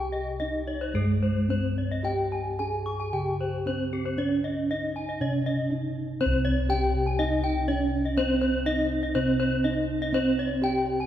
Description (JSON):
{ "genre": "Balinese gamelan", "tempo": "109-122 BPM", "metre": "4/4", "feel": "straight", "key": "C pelog", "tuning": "A4 = 440 Hz", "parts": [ { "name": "gamelan-type bronze metallophone", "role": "melody", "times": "0.0-11.1 s", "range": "Ab3 to Ab4", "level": "-28 LUFS", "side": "right 2 dB", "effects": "none" }, { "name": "gamelan-type bossed gongs", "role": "bass", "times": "0.0-11.1 s", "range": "C2 to G4", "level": "-29 LUFS", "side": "equal", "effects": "none" }, { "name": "gamelan-type bronze metallophone", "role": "arpeggios", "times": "0.1-11.1 s", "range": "G4 to Db6+35c", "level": "-30 LUFS", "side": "left 2 dB", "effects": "none" } ], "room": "wet concert hall reverb, RT60 2.4 s", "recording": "recorded in a church or concert hall", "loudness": "-24 LUFS", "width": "side -11 dB against mid", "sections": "0.0-6.2 A section; 6.2-11.1 B section", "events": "none", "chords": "none", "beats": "0.40 0.95 1.50 | 2.05 2.59 3.13 3.66 | 4.19 4.70 5.21 5.71 | 6.21 6.70 7.19 7.68 | 8.17 8.66 9.16 9.65 | 10.14 10.63" }